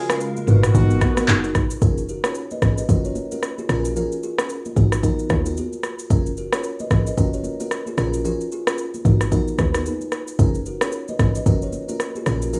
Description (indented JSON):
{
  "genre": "afrobeats",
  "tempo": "112 BPM",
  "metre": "4/4",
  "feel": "swing 58% on 16ths",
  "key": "F# major",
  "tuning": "A4 = 440 Hz",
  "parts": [
    { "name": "warm horn section", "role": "second line", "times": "0.0-1.5 s", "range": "D#3 to G#4", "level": "-30 LUFS", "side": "equal", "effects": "none" },
    { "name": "hollow soft pad", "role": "sustained chords", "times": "0.0-1.8 s", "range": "B2 to E#5", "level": "-34 LUFS", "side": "equal", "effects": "none" },
    { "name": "kalimba", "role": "riff", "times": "0.0-12.6 s", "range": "D#4 to D#5", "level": "-32 LUFS", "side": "equal", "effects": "tape echo" },
    { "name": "crystalline FM electric piano", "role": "accompaniment", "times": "0.1-12.6 s", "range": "B3 to A#4", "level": "-30 LUFS", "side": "equal", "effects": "chorus, tremolo" },
    { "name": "afro-pop drum kit", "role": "drums", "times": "0.1-12.6 s", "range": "handclaps, kick drum, rim click, shaker, toms", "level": "-24 LUFS", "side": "equal", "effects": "vintage 12-bit sampler grit" },
    { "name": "congas", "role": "percussion", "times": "0.4-12.6 s", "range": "none", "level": "-32 LUFS", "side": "equal", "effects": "none" },
    { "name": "woody log drum bass", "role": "bass", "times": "0.5-12.6 s", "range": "F#1 to D#2", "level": "-23 LUFS", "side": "equal", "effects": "none" }
  ],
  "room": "small room reverb",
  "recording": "rough home demo mix, studio reverb",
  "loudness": "-21 LUFS",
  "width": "mono",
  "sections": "0.0-1.8 A section; 1.8-12.6 B section",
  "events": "none",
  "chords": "0.5 G#m9; 1.8 F#maj9; 3.7 A#m7; 4.8 G#m9; 6.1 F#maj9; 8.0 A#m7; 9.1 G#m9; 10.4 F#maj9",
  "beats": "0.21 0.75 1.28 | 1.82 2.35 2.89 3.43 | 3.96 4.50 5.03 5.57 | 6.11 6.64 7.18 7.71 | 8.25 8.78 9.32 9.86 | 10.39 10.93 11.46 12.00 | 12.53"
}